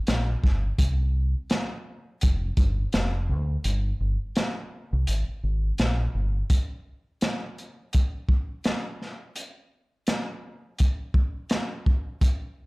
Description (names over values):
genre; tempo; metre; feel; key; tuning
hip hop, boom-bap hip-hop; 84 BPM; 4/4; swing 59% on 16ths; unclear; A4 = 440 Hz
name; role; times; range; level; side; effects
deep dub fingered electric bass; bass; 0.1-6.4 s; F1 to D2; -24 LUFS; equal; none
crunchy breakbeat drum kit; drums; 0.1-12.4 s; hi-hat, kick drum, snare drum; -24 LUFS; equal; none
room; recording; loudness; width
little or no reverb; played on a big sound system in a bare room, large studio reverb; -24 LUFS; side -25 dB against mid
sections
0.0-6.5 A section; 6.5-12.7 A section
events
kick muted 3.6-6.5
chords
none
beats
0.07 | 0.79 1.50 2.21 2.93 | 3.64 4.36 5.07 5.79 | 6.50 7.21 7.93 8.64 | 9.36 10.07 10.79 11.50 | 12.21